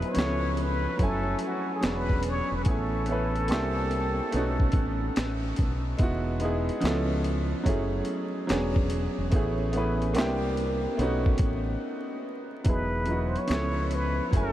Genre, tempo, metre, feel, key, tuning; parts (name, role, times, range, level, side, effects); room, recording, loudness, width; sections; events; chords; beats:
lo-fi hip hop; 72 BPM; 4/4; swing 65% on 16ths; E major; A4 = 440 Hz
clear upright piano; accompaniment; 0.0-14.5 s; E#3 to G#5; -29 LUFS; right 1 dB; cassette tape, low-pass filter
deep dub fingered electric bass; bass; 0.0-14.5 s; E1 to C#2; -30 LUFS; equal
boom bap sampler-style drum kit; drums; 0.0-14.5 s; handclaps, hi-hat, kick drum, snare drum; -30 LUFS; equal
trumpet with plunger mute; melody; 0.1-5.2, 12.7-14.5 s; F#4 to C#5; -33 LUFS; left 1 dB; low-pass filter, diffuse ambient delay
finger snaps; percussion; 13.5-13.8 s; barely audible
moderate huge ambient reverb, RT60 7.8 s; dreamy mix soaked in reverb, vinyl crackle; -25 LUFS; side -13 dB against mid
0.0-12.7 A section; 12.7-14.5 A section
break 11.8-12.7
0.2 C#7alt; 1.0 F#m9; 1.8 E13; 2.7 Amaj9; 3.5 C9; 4.3 B9; 6.0 Emaj9; 6.8 C#7alt; 7.7 F#m9; 8.5 E13; 9.3 Amaj9; 10.2 C9; 11.0 B9; 12.7 Emaj9; 13.5 C#7alt
0.16 1.00 1.83 | 2.66 3.50 4.33 5.16 | 6.00 6.83 7.66 8.50 | 9.33 10.16 11.00 11.83 | 12.66 13.50 14.33